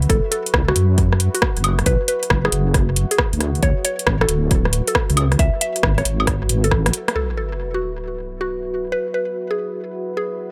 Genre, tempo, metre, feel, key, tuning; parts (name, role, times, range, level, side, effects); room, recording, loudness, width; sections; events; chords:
UK garage, two-step garage; 136 BPM; 4/4; swing 66% on 16ths; F# minor; A4 = 440 Hz
deep soft wobble bass; bass; 0.0-6.9 s; D1 to F#2; -21 LUFS; equal; chorus
house drum kit; drums; 0.0-7.1 s; hi-hat, rim click, woodblock; -23 LUFS; equal; tape echo
deep dark ambient pad; texture; 0.0-10.5 s; F#4 to E5; -33 LUFS; equal; chorus, built-in reverb, sidechain pumping
mallet-like synth pluck; melody; 0.1-10.3 s; F#4 to E5; -27 LUFS; equal; chorus, tape echo
electronic kick drum; drums; 0.1-6.8 s; -23 LUFS; equal
sub drop; sound effects; 7.2-8.9 s; -31 LUFS; equal
light reverb; echo-heavy mix; -19 LUFS; mono
0.0-7.2 A section; 7.2-10.5 B section
drum fill 6.7-7.2; band accent 7.0; impact 7.2-8.9
0.1 F#5; 1.9 Bsus4; 3.4 Dmaj9; 5.2 C#m7; 7.2 F#7sus4